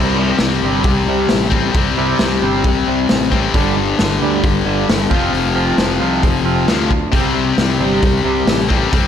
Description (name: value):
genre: quiet-loud alternative rock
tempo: 134 BPM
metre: 4/4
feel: straight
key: unclear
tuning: A4 = 440 Hz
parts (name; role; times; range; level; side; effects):
- twangy electric guitar; arpeggios; 0.0-9.1 s; G2 to F4; -21 LUFS; right 6 dB; wide subtle chorus, slapback echo
- high-gain distorted guitar; riff; 0.0-9.1 s; F2 to C4; -17 LUFS; left 7 dB; distortion, slapback echo
- fuzz fingered electric bass; bass; 0.0-9.1 s; F1 to D2; -21 LUFS; equal; overdrive
- raw garage drum kit; drums; 0.4-9.0 s; hi-hat, kick drum, snare drum; -18 LUFS; equal; none
room: moderate lush hall reverb, RT60 1.7 s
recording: big arena sound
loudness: -13 LUFS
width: side -9 dB against mid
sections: 0.0-9.1 A section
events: none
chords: 0.0 C5; 3.5 G5; 5.1 F5; 7.1 C5